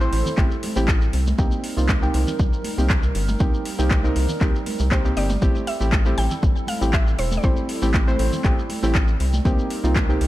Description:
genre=deep house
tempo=119 BPM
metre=4/4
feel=straight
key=A minor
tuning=A4 = 442 Hz
part: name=mallet-like synth pluck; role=melody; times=0.0-0.3, 4.9-8.9 s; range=C5 to G5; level=-30 LUFS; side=equal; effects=chorus, tape echo
part: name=hollow soft pad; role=sustained chords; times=0.0-10.3 s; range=G3 to Bb4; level=-32 LUFS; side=right 1 dB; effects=chorus, sidechain pumping
part: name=deep mellow chord stab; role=stabs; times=0.0-10.3 s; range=A3 to C5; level=-26 LUFS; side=right 1 dB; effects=chorus, tape echo
part: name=rubbery square bass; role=bass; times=0.0-10.3 s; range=E1 to C2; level=-22 LUFS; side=equal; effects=sidechain pumping
part: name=shekere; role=percussion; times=0.0-10.2 s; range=none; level=-38 LUFS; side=left 2 dB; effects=none
part: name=deep house drum kit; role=drums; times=0.1-10.3 s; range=handclaps, hi-hat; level=-29 LUFS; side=equal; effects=overdrive
part: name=congas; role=percussion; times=0.3-10.1 s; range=none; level=-33 LUFS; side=right 2 dB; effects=sidechain pumping on perc
part: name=electronic kick drum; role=drums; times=0.4-10.1 s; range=none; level=-20 LUFS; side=equal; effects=overdrive
room=little or no reverb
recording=none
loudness=-18 LUFS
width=side -16 dB against mid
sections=0.0-10.3 A section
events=none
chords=0.0 Am7; 1.1 Cm7; 5.4 Am7; 9.2 Cm7

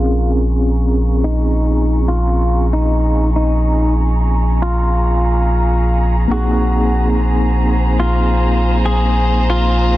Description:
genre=trip hop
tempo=71 BPM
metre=4/4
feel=swing 53% on 16ths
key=Bb minor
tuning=A4 = 440 Hz
part: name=clean electric guitar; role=melody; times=0.0-10.0 s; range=Eb4 to Ab4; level=-21 LUFS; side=left 1 dB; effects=tape echo
part: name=mellow tine electric piano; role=accompaniment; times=0.0-10.0 s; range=Bb3 to Ab4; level=-22 LUFS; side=equal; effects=fast stereo tremolo, vintage 12-bit sampler grit, tape echo
part: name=clear chamber violin section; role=sustained chords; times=0.0-10.0 s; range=Ab4 to Db6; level=-25 LUFS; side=right 1 dB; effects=low-pass filter
part: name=warm sub bass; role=bass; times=0.0-10.0 s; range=Bb1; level=-15 LUFS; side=equal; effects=none
room=digital ambience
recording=dense, heavily limited modern master, low-pass filter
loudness=-13 LUFS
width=side -16 dB against mid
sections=0.0-10.0 A section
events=filter sweep on violin section 0.0-10.0; filter sweep 0.0-10.0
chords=0.0 Bbm7; 6.3 Abadd9/Bb

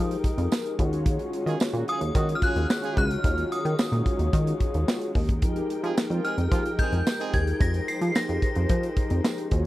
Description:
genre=early-eighties boogie funk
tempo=110 BPM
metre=4/4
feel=straight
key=unclear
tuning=A4 = 440 Hz
part: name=synth chime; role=melody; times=0.0-9.5 s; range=Eb6 to C7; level=-32 LUFS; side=left 1 dB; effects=ensemble chorus
part: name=mellow synth brass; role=accompaniment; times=0.0-9.7 s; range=Eb4 to Db5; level=-31 LUFS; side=left 2 dB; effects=chorus
part: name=dark studio string section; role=sustained chords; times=0.0-9.7 s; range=Eb3 to G5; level=-36 LUFS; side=right 1 dB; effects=none
part: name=chorused synth bass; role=bass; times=0.0-9.7 s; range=Db2 to F3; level=-26 LUFS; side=equal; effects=none
part: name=modern studio drum kit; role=drums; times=0.1-9.6 s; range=handclaps, hi-hat, kick drum, snare drum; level=-25 LUFS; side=equal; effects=none
part: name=tambourine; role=percussion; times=0.5-9.4 s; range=none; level=-40 LUFS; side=right 11 dB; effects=none
part: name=clear horn section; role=second line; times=1.5-7.4 s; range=Bb3 to Ab4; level=-34 LUFS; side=right 6 dB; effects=none
room=little or no reverb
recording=dry, close 1970s-style studio recording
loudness=-23 LUFS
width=side -16 dB against mid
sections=0.0-9.7 A section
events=none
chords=0.0 Fm11; 0.8 Ebm11; 5.4 Fm11

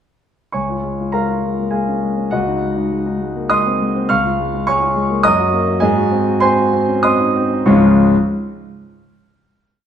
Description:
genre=classical, virtuoso piano study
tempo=90-104 BPM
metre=3/4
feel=rubato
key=Db major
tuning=A4 = 438 Hz
part: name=warm grand piano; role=solo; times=0.5-8.1 s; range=Db2 to F6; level=-14 LUFS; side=equal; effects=none
room=wet recital hall reverb, RT60 1.4 s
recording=dark, warm production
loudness=-14 LUFS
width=side -8 dB against mid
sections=0.5-7.7 A section; 7.7-9.6 final chord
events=none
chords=0.5 Db; 2.3 Ab7/Db; 4.1 Db; 5.2 Ebm/Gb; 5.8 Ab7; 7.7 Db

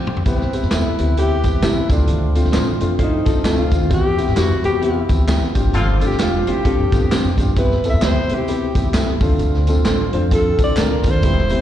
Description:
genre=uptempo 1960s-style soul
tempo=131 BPM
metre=4/4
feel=swing 59% on 8ths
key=C major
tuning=A4 = 441 Hz
part: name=percussive tonewheel organ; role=sustained chords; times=0.0-11.6 s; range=B2 to B4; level=-29 LUFS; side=right 2 dB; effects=overdrive, lush chorus
part: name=vintage drum kit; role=drums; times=0.1-11.6 s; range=hi-hat, kick drum, snare drum, toms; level=-20 LUFS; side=equal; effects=none
part: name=breathy alto saxophone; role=melody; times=0.3-11.6 s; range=C4 to E5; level=-22 LUFS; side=equal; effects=slapback echo
part: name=clear upright piano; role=accompaniment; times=0.3-11.6 s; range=A3 to C5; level=-23 LUFS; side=left 4 dB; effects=slapback echo
part: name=upright bass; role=bass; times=0.3-11.5 s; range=E1 to C3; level=-19 LUFS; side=equal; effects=none
part: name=tambourine and handclaps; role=percussion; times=0.3-11.6 s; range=none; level=-33 LUFS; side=left 1 dB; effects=slapback echo
part: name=electric guitar through a small old amp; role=stabs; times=0.7-10.9 s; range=B3 to A4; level=-25 LUFS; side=right 7 dB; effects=slapback echo
part: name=archtop guitar, miked and amplified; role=riff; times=3.0-7.5 s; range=A3 to C5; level=-28 LUFS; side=left 6 dB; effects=slapback echo
part: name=warm horn section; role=second line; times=5.7-6.1 s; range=D3 to F4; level=-25 LUFS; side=left 1 dB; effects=slapback echo
room=little or no reverb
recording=live gig heard through the venue's PA, cassette tape, recital hall reverb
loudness=-15 LUFS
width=side -11 dB against mid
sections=0.3-11.6 A section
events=upright piano fill 0.0; drum fill 0.0; band accent 0.0, 5.7-7.6; alto saxophone solo 0.3-11.6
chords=0.3 Cmaj7; 1.9 Dm7; 3.9 Cmaj7/E; 5.5 G7sus4; 7.6 Cmaj7; 9.2 Dm7

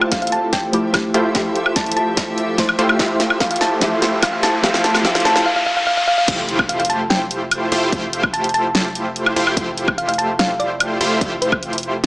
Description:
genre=future bass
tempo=146 BPM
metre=4/4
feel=half-time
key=F major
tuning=A4 = 441 Hz
part: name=soft round pluck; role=accompaniment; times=0.0-5.5 s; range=F3 to E5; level=-24 LUFS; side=equal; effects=chorus, sidechain pumping, dub echo
part: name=shimmering ambient pad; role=sustained chords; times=0.0-5.4 s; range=F3 to E5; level=-31 LUFS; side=equal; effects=none
part: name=supersaw stab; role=riff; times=0.0-12.1 s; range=A3 to C5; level=-20 LUFS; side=equal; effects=sidechain pumping, low-pass filter, dub echo
part: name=pop drum kit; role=drums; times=0.0-12.1 s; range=crash cymbal, hi-hat, snare drum, woodblock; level=-19 LUFS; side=equal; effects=high-pass filter on hats, high-pass filter on snare, high-pass filter on perc, high-pass filter on cymbals
part: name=riser and impact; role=sound effects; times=2.3-7.9 s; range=none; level=-24 LUFS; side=left 1 dB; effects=none
part: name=thumb-piano-like synth pluck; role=melody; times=0.1-11.6 s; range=C5 to A5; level=-20 LUFS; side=equal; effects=chorus, sidechain pumping, digital delay
part: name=electronic kick drum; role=drums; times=0.1-11.6 s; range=none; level=-25 LUFS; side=equal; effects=none
part: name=long sustained 808-style bass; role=bass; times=6.3-12.1 s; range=F1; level=-35 LUFS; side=equal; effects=sidechain pumping
room=moderate lush hall reverb, RT60 1.7 s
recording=high-pass filter, small speaker sound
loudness=-15 LUFS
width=side -22 dB against mid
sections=0.0-6.3 A section; 6.3-12.1 B section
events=build-up 0.0-6.3; drum fill 0.0-5.5; filter sweep on supersaw synth 0.0-6.3; riser 2.3-6.3; drop 6.3-12.1; impact 6.3-7.9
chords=0.0 Fmaj9

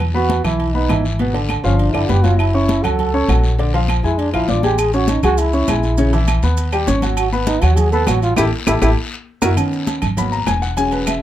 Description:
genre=Afro-Cuban jazz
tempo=200 BPM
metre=4/4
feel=straight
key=E major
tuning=A4 = 440 Hz
part: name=upright bass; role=bass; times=0.0-11.2 s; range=E1 to E#2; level=-18 LUFS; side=equal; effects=none
part: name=agogo bells and timbales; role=percussion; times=0.0-11.2 s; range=none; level=-27 LUFS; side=right 8 dB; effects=none
part: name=guiro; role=percussion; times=0.0-11.2 s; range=none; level=-32 LUFS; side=left 6 dB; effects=none
part: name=breathy trombone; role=second line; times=0.1-9.5 s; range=B3 to A4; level=-20 LUFS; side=right 3 dB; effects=none
part: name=warm grand piano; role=accompaniment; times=0.1-11.2 s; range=B2 to D6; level=-20 LUFS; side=left 1 dB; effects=none
part: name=congas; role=percussion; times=0.1-11.2 s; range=none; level=-25 LUFS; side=left 2 dB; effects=none
part: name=claves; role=percussion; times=0.4-11.2 s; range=none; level=-29 LUFS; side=left 4 dB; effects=none
part: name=maracas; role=percussion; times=4.8-11.2 s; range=none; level=-31 LUFS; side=right 6 dB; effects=none
room=light reverb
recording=none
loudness=-14 LUFS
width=side -12 dB against mid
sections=0.0-9.6 A section; 9.6-11.2 A section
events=trombone solo 0.0-9.6; band accent 8.4-9.6; drum fill 8.7-9.6; grand piano solo 9.6-11.2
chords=0.0 Emaj7; 1.2 G#dim; 1.8 G7; 2.4 F#m7; 3.6 A#7; 4.8 Amaj7; 6.0 A#dim; 6.6 D#7alt; 7.2 G#m7; 8.4 A5; 9.0 F#7; 9.6 Badd9; 10.2 G#m7

